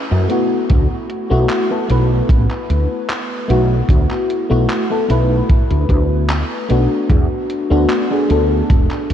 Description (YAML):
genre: vaporwave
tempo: 75 BPM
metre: 4/4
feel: straight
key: D major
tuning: A4 = 440 Hz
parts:
  - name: FM electric piano with soft pad layer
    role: accompaniment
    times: 0.0-9.1 s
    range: A3 to B4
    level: -18 LUFS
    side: left 1 dB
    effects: wide subtle chorus, ping-pong delay
  - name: woody fretless electric bass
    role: bass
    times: 0.1-9.1 s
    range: E1 to F#2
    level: -15 LUFS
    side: equal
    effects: tube saturation, ensemble chorus
  - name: gated 80s digital drum machine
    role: drums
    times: 0.3-9.1 s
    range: handclaps, hi-hat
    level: -28 LUFS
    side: equal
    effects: gated reverb, studio reverb
  - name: kick drum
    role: drums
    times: 0.7-8.9 s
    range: none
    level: -14 LUFS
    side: equal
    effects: studio reverb
room: moderate huge ambient reverb, RT60 6.0 s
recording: dreamy mix soaked in reverb, cassette tape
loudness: -13 LUFS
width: side -10 dB against mid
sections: 0.0-9.1 A section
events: none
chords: 0.0 F#m7; 0.7 D69; 7.1 E9sus4